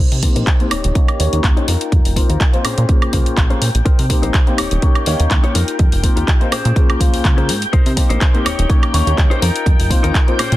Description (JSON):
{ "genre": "filtered disco house", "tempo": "124 BPM", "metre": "4/4", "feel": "swing 54% on 16ths", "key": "Bb dorian", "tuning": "A4 = 441 Hz", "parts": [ { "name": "string machine, full ensemble", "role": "sustained chords", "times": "0.3-10.6 s", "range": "G5 to G6", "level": "-28 LUFS", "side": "equal", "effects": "ensemble chorus, sidechain pumping, low-pass filter" }, { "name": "direct-recorded clean electric guitar", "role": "riff", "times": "0.0-10.6 s", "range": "Db4 to Db5", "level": "-25 LUFS", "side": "left 5 dB", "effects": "sidechain pumping, low-pass filter" }, { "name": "plucky analog bass", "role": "bass", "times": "0.0-10.6 s", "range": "Eb1 to C3", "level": "-18 LUFS", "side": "equal", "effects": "sidechain pumping, low-pass filter" }, { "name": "house drum kit", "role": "drums", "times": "0.1-10.6 s", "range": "handclaps, hi-hat, woodblock", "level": "-22 LUFS", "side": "equal", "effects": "sidechain pumping on hats, sidechain pumping on cymbals, sidechain pumping on perc" }, { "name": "dark baby grand piano", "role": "accompaniment", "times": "0.2-10.4 s", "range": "Bb3 to Db5", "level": "-22 LUFS", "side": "left 2 dB", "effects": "phaser, vintage 12-bit sampler grit, sidechain pumping, low-pass filter" }, { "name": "electronic kick drum", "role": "drums", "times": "0.2-10.3 s", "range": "none", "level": "-14 LUFS", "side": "equal", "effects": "none" } ], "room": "little or no reverb", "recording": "dense, heavily limited modern master", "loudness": "-12 LUFS", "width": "side -16 dB against mid", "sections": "0.0-10.6 A section", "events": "filter sweep 0.0-10.6", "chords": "0.0 Cm7; 0.7 Eb7; 1.7 F7sus4; 2.6 Bbm9; 3.9 Cm7; 4.6 Eb7; 5.6 F7sus4; 6.5 Bbm9; 7.7 Cm7; 8.5 Eb7; 9.4 F7sus4" }